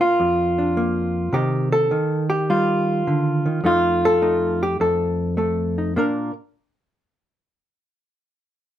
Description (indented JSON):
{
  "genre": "solo jazz",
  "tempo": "104 BPM",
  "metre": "4/4",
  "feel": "swing 68% on 8ths",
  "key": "Bb major",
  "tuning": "A4 = 440 Hz",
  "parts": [
    { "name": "hollow-body jazz guitar", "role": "solo", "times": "0.0-6.3 s", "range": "F2 to Bb4", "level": "-18 LUFS", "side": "equal", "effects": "none" }
  ],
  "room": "light reverb",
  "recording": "minimal, uncompressed stereo recording",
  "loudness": "-18 LUFS",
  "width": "side -11 dB against mid",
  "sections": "0.0-1.3 A section; 1.3-5.9 B section; 5.9-8.2 C section",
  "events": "none",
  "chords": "0.0 Bb; 1.3 Cm; 3.6 F7; 5.9 Bb"
}